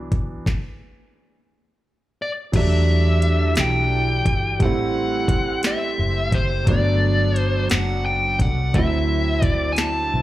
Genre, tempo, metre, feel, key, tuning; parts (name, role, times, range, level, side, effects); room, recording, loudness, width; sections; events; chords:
slow six-eight R&B; 58 BPM (dotted quarters); 6/8; straight; E minor; A4 = 439 Hz
clear concert grand piano; accompaniment; 0.0-10.2 s; E3 to E4; -25 LUFS; right 3 dB; slapback echo
vintage muted fingered electric bass; bass; 0.0-10.2 s; F#1 to E2; -21 LUFS; equal
smooth R&B drum kit; drums; 0.1-9.9 s; crash cymbal, hi-hat, kick drum, snare drum; -22 LUFS; equal
dark smooth lead guitar; melody; 2.2-10.2 s; C5 to A5; -24 LUFS; left 2 dB; overdrive
lush unison pad; sustained chords; 2.5-10.2 s; D3 to C5; -32 LUFS; right 1 dB; chorus
digital ambience; live gig heard through the venue's PA, club reverb; -18 LUFS; side -15 dB against mid
0.0-2.5 A section; 2.5-10.2 B section
stop 0.5-2.5
0.5 N.C.; 2.5 Em11; 4.6 Am7; 6.7 Gmaj9; 8.7 D9